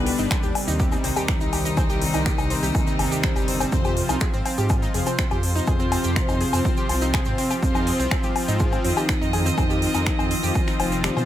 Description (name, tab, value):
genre	melodic techno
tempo	123 BPM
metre	4/4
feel	straight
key	unclear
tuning	A4 = 440 Hz
part	mellow synth brass	melody	0.0-11.3 s	Eb2 to Eb4	-28 LUFS	equal	chorus, sidechain pumping, digital delay
part	clear chamber violin section	second line	0.0-11.3 s	Eb4 to Eb5	-32 LUFS	equal	sidechain pumping, tape echo
part	analog pluck	arpeggios	0.0-11.3 s	G3 to C6	-30 LUFS	right 1 dB	chorus, sidechain pumping, tape echo
part	brassy analog pad	stabs	0.0-11.3 s	C3 to F4	-28 LUFS	left 1 dB	chorus, sidechain pumping, tape echo
part	swelling detuned saw bass	bass	0.0-11.2 s	F1 to B2	-26 LUFS	equal	sidechain pumping
part	techno drum kit	drums	0.1-11.3 s	finger snaps, hi-hat, woodblock	-28 LUFS	left 3 dB	none
part	egg shaker	percussion	0.2-11.3 s	none	-36 LUFS	right 5 dB	none
part	electronic kick drum	drums	0.3-10.7 s	none	-24 LUFS	equal	none
room	little or no reverb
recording	none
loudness	-20 LUFS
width	side -12 dB against mid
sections	0.0-11.3 A section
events	kick drops out 11.0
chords	0.0 Cmadd9; 3.7 Fm7